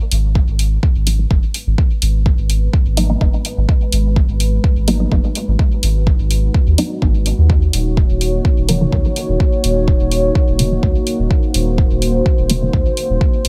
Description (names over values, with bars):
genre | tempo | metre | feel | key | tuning
dub techno | 126 BPM | 4/4 | straight | G# dorian | A4 = 440 Hz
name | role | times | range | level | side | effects
dark analog pad | sustained chords | 0.0-13.5 s | G#3 to C#5 | -24 LUFS | equal | chorus, sidechain pumping
soft dub sub bass | bass | 0.1-13.5 s | D#1 to D#2 | -18 LUFS | equal | sidechain pumping
electronic hi-hat | drums | 0.1-13.5 s | none | -25 LUFS | equal | none
electronic kick drum | drums | 0.4-13.3 s | none | -17 LUFS | equal | none
filtered dub chord stab | stabs | 1.1-12.9 s | C#3 to D#4 | -23 LUFS | equal | phaser, dub echo
room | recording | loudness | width
little or no reverb | echo-heavy mix | -15 LUFS | mono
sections
0.0-13.5 A section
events
filter sweep on synth stab 0.0-13.5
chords
0.0 G#m7; 7.5 D#m7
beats
0.35 0.83 1.31 | 1.78 2.26 2.73 3.21 | 3.69 4.16 4.64 5.12 | 5.59 6.07 6.54 7.02 | 7.50 7.97 8.45 8.93 | 9.40 9.88 10.35 10.83 | 11.31 11.78 12.26 12.73 | 13.21